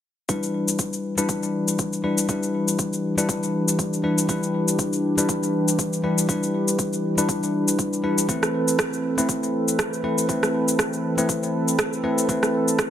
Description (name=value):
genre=afro house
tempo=120 BPM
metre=4/4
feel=swing 56% on 16ths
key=E minor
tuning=A4 = 442 Hz
part: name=warm analog pad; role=sustained chords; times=0.3-12.9 s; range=E3 to B4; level=-26 LUFS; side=right 2 dB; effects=chorus, sidechain pumping
part: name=bell-like tine electric piano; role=stabs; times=0.3-12.9 s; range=G3 to B4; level=-24 LUFS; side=left 2 dB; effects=sidechain pumping, low-pass filter, ping-pong delay
part: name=electronic cabasa and rim click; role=drums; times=0.3-12.9 s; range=none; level=-25 LUFS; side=left 1 dB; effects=overdrive
part: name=electronic kick drum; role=drums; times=0.3-12.9 s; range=none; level=-30 LUFS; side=right 2 dB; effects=overdrive, high-pass filter on kick, high-pass filter on room
room=light reverb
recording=none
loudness=-20 LUFS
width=side -10 dB against mid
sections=0.3-12.9 A section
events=filter sweep on analog synth pad 0.3-12.9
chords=0.3 Em7; 8.3 Amadd9/E